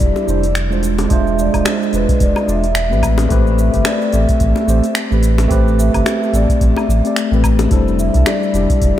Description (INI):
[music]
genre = sunset chillout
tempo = 109 BPM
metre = 4/4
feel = swing 58% on 16ths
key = A minor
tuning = A4 = 441 Hz
[part]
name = vibraphone with soft mallets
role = melody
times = 0.0-9.0 s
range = B4 to E5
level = -22 LUFS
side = equal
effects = ping-pong delay, shimmer reverb
[part]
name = tine electric piano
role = accompaniment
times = 0.0-9.0 s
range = G3 to D5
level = -18 LUFS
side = moving between left 7 dB and right 7 dB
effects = auto-pan, ping-pong delay, shimmer reverb
[part]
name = warm sub bass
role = bass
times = 0.0-8.9 s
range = D1 to C2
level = -16 LUFS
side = equal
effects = none
[part]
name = electronic kick drum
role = drums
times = 0.0-8.9 s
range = none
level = -17 LUFS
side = equal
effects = small room ambience
[part]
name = smooth R&B drum kit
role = drums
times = 0.0-8.9 s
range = finger snaps, hi-hat, shaker, woodblock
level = -25 LUFS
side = equal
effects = small room ambience
[part]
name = bongos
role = percussion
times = 0.2-8.4 s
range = none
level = -27 LUFS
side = left 4 dB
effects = none
[sound]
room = moderate cathedral reverb, RT60 5.3 s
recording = dreamy mix soaked in reverb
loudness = -12 LUFS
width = side -12 dB against mid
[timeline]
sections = 0.0-9.0 A section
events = none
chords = 0.0 Fmaj7sus2; 0.8 E7b9b13; 3.0 Am9; 7.7 Fmaj13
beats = 0.01 0.56 | 1.11 1.66 2.21 2.76 | 3.31 3.86 4.41 4.96 | 5.51 6.06 6.61 7.16 | 7.71 8.26 8.81